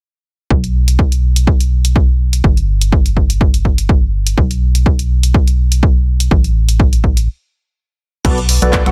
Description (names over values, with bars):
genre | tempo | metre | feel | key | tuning
piano house | 124 BPM | 4/4 | swing 55% on 16ths | B minor | A4 = 440 Hz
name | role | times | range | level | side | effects
organ-like FM bass | bass | 0.5-8.9 s | G1 to B1 | -16 LUFS | equal | sidechain pumping
electronic kick drum | drums | 0.5-8.8 s | none | -15 LUFS | equal | none
punchy analog drum machine | drums | 0.6-8.9 s | crash cymbal, finger snaps, handclaps, hi-hat | -22 LUFS | equal | none
percussive organ stab | riff | 8.2-8.9 s | B3 to F#5 | -20 LUFS | equal | ensemble chorus, sidechain pumping, dub echo
room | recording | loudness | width
digital ambience | echo-heavy mix | -13 LUFS | mono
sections
0.5-8.2 A section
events
filter sweep on FM bass 0.5-8.2; stop 7.3-8.2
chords
0.5 N.C.; 8.2 Bm7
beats
| 0.51 0.99 1.47 1.96 | 2.44 2.92 3.41 3.89 | 4.38 4.86 5.34 5.83 | 6.31 6.80 7.28 7.76 | 8.25 8.73